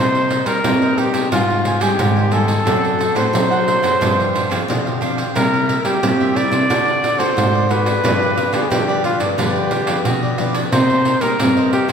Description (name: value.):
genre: samba and choro.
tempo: 89 BPM.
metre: 4/4.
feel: straight.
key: C minor.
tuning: A4 = 440 Hz.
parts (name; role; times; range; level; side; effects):
warm trumpet; melody; 0.0-11.9 s; F4 to D5; -19 LUFS; equal; none.
cavaquinho; accompaniment; 0.0-11.9 s; D4 to Ab5; -24 LUFS; right 2 dB; none.
nylon-string guitar; accompaniment; 0.0-11.9 s; G2 to A4; -24 LUFS; left 4 dB; none.
nylon-string guitar; bass; 0.0-11.9 s; F#2 to C4; -20 LUFS; equal; none.
pandeiro; percussion; 0.1-11.9 s; none; -21 LUFS; right 2 dB; none.
room: wet scoring stage reverb, RT60 1.8 s.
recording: recorded in a church or concert hall.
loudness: -14 LUFS.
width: side -7 dB against mid.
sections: 0.0-11.9 A section.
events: none.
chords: 0.0 Cm7; 1.3 Abmaj7; 2.7 D7/F#; 4.0 G7sus4; 5.4 C7; 6.7 D7; 8.0 G7; 10.7 Cm7.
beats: 0.65 1.32 1.99 | 2.67 3.34 4.01 4.68 | 5.36 6.03 6.70 7.37 | 8.04 8.72 9.39 10.06 | 10.73 11.40.